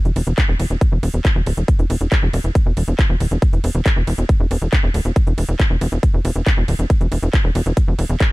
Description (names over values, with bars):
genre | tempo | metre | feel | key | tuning
psychedelic trance | 138 BPM | 4/4 | straight | unclear | A4 = 441 Hz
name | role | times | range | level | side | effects
tight sequencer bass | bass | 0.1-8.2 s | D1 to E1 | -18 LUFS | equal | none
drum and bass drum kit | drums | 0.1-8.3 s | handclaps, hi-hat, ride cymbal | -26 LUFS | equal | none
electronic kick drum | drums | 0.4-8.3 s | none | -16 LUFS | equal | none
room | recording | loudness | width
little or no reverb | none | -15 LUFS | side -21 dB against mid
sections
0.0-8.3 A section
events
none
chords
none